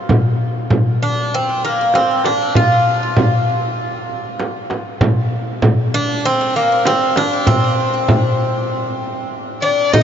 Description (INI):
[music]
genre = Turkish makam ensemble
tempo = 98 BPM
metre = 4/4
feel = straight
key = C makam ussak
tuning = A4 = 441 Hz
[part]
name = darbuka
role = percussion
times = 0.1-10.0 s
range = none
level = -20 LUFS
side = left 1 dB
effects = none
[part]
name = frame drum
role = percussion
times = 0.1-10.0 s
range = none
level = -20 LUFS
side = right 2 dB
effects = none
[part]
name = Greek bouzouki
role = melody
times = 1.0-10.0 s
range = Bb3 to F4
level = -17 LUFS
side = equal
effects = ping-pong delay
[part]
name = warm violin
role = second line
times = 9.6-10.0 s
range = D5-32c to Eb5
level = -14 LUFS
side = left 7 dB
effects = none
[sound]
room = wet huge ambient reverb, RT60 8.0 s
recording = dreamy mix soaked in reverb, nothing above 7.6 kHz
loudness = -14 LUFS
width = side -8 dB against mid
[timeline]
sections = 0.0-9.9 A section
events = stop 8.7-9.9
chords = none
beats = | 0.10 0.72 1.33 1.94 | 2.56 3.17 3.79 4.40 | 5.01 5.63 6.24 6.86 | 7.47 8.09 8.71 9.32 | 9.94